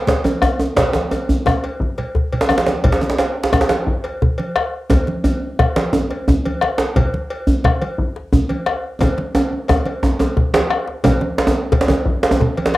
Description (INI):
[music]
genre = west african traditional, West African drum ensemble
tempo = 117 BPM (dotted quarters)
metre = 12/8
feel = straight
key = none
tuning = none
[part]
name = congas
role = percussion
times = 0.1-12.8 s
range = none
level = -22 LUFS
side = right 1 dB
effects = none
[part]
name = djembe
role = percussion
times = 0.1-12.8 s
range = none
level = -21 LUFS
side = left 1 dB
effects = none
[part]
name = djembe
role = percussion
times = 0.1-12.8 s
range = none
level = -17 LUFS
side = right 1 dB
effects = none
[part]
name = cowbell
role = percussion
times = 0.2-12.7 s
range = none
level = -27 LUFS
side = left 1 dB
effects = none
[part]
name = bombo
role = percussion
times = 0.4-12.8 s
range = none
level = -20 LUFS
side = left 2 dB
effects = none
[sound]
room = wet studio reverb, RT60 0.5 s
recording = home recording on cassette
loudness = -15 LUFS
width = side -17 dB against mid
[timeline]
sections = 0.0-11.0 A section; 11.0-12.8 B section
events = drum fill 2.0-2.8, 9.0-11.0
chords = none